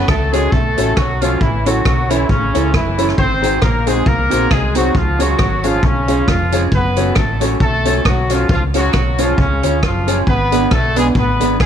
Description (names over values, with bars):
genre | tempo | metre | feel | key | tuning
ska | 136 BPM | 4/4 | swing 57% on 8ths | F# harmonic minor | A4 = 440 Hz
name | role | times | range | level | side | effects
clear horn section | melody | 0.0-11.7 s | C#3 to B#4 | -18 LUFS | left 1 dB | none
mellow electric guitar | accompaniment | 0.0-11.6 s | B3 to A4 | -22 LUFS | right 12 dB | slapback echo
dark upright piano | stabs | 0.0-11.5 s | B3 to C#5 | -22 LUFS | left 10 dB | none
fingered electric bass | bass | 0.1-11.7 s | E#1 to D2 | -19 LUFS | equal | none
swinging big-band drum kit | drums | 0.1-11.7 s | hi-hat, kick drum, rim click | -18 LUFS | equal | none
room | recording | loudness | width
light reverb, studio ambience | 1960s-style stereo with parts hard left and right | -12 LUFS | side -8 dB against mid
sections
0.0-11.7 A section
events
none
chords
0.0 F#m; 1.4 A; 3.2 G#7; 5.0 C#; 6.7 F#m; 8.5 C#; 10.3 G#dim